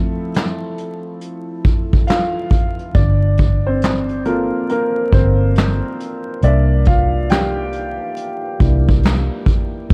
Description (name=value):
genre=lo-fi hip hop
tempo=69 BPM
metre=4/4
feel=swing 65% on 16ths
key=unclear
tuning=A4 = 440 Hz
part: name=warm upright piano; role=accompaniment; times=0.0-9.9 s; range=F3 to G5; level=-23 LUFS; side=equal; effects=cassette tape, low-pass filter
part: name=vintage brush drum kit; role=drums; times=0.3-9.9 s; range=handclaps, hi-hat, kick drum, snare drum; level=-18 LUFS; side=equal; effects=none
part: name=vintage muted fingered electric bass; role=bass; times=3.0-9.9 s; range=G1 to C2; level=-18 LUFS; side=equal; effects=none
room=little or no reverb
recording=dark, warm production, vinyl crackle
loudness=-17 LUFS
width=mono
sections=0.0-9.9 A section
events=break 0.0-2.9; upright piano solo 0.0-9.9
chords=0.0 Fmaj7; 2.9 Gm11; 6.4 C9